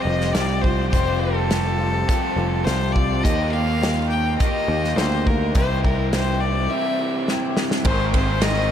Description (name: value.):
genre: folk rock and heartland rock.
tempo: 104 BPM.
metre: 4/4.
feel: straight.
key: unclear.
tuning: A4 = 440 Hz.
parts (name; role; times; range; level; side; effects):
clear fiddle; melody; 0.0-8.7 s; A4 to G5; -24 LUFS; left 2 dB; diffuse ambient delay.
picked old ladder-braced acoustic guitar; accompaniment; 0.0-8.7 s; C3 to Bb4; -29 LUFS; left 5 dB; none.
crunchy overdriven guitar; riff; 0.0-8.7 s; Ab2 to Ab4; -26 LUFS; right 2 dB; spring reverb.
picked electric bass; bass; 0.1-8.7 s; F1 to Eb2; -23 LUFS; equal; none.
loose indie drum kit; drums; 0.2-8.6 s; hi-hat, kick drum, ride cymbal, snare drum; -24 LUFS; equal; none.
tonewheel organ; sustained chords; 7.9-8.7 s; Bb4 to C6; -34 LUFS; equal; none.
room: moderate huge ambient reverb, RT60 8.5 s.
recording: dreamy mix soaked in reverb.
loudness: -18 LUFS.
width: side -9 dB against mid.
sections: 0.0-7.9 A section.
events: drum fill 7.3-7.9.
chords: 0.0 Fsus2; 3.2 Ebadd9; 5.6 C; 7.9 Abadd9.